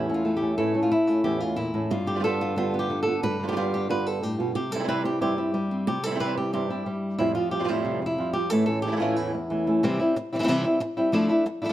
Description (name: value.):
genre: flamenco.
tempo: 182 BPM.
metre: 4/4.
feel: straight.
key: unclear.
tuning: A4 = 441 Hz.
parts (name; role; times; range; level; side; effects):
flamenco guitar; melody; 0.0-11.7 s; E2 to B4; -24 LUFS; left 1 dB; none.
flamenco guitar; stabs; 0.0-9.8 s; F2 to F4; -28 LUFS; right 3 dB; none.
room: wet stone room reverb, RT60 1.2 s.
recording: none.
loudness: -23 LUFS.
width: side -13 dB against mid.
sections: 0.0-9.8 A section; 9.8-11.7 B section.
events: none.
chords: 0.0 A; 1.9 G7; 4.6 C; 7.2 Fadd9; 8.5 A; 9.8 C; 11.1 Dmadd9.